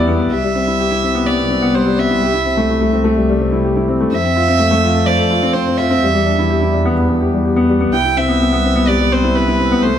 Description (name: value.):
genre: piano and strings electronica.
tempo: 126 BPM.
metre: 4/4.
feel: straight.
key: unclear.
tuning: A4 = 439 Hz.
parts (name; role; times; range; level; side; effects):
warm concert grand piano; riff; 0.0-10.0 s; G3 to D5; -15 LUFS; left 2 dB; ping-pong delay.
rich symphonic double bass section; bass; 0.0-10.0 s; C2 to F2; -20 LUFS; equal; none.
rich violin; melody; 0.3-10.0 s; B4 to G5; -18 LUFS; right 3 dB; none.
room: light reverb, small room ambience.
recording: none.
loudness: -12 LUFS.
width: side -9 dB against mid.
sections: 0.3-10.0 A section.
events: none.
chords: 0.3 Cmaj7; 2.2 Am7/C; 4.1 F; 6.0 Em7; 7.9 Cmaj7.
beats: | 0.31 0.79 1.26 1.74 | 2.22 2.69 3.17 3.65 | 4.12 4.60 5.07 5.55 | 6.03 6.50 6.98 7.46 | 7.93 8.41 8.88 9.36 | 9.84.